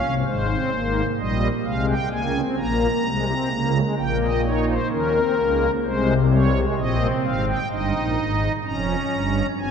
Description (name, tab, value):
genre	classical, baroque-style 3-part fugue for pipe organ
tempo	64 BPM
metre	4/4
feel	straight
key	unclear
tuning	A4 = 440 Hz
part	pipe organ, strings celeste	solo	0.0-9.7 s	F1 to Bb5	-19 LUFS	equal	none
room	wet church reverb, RT60 3.5 s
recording	none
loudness	-19 LUFS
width	side -7 dB against mid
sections	0.0-7.7 A section; 7.7-9.7 B section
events	none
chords	0.3 Ab; 2.1 Bbm7; 4.0 Gdim/Bb (rootless); 5.8 Ab/C; 7.7 Fm11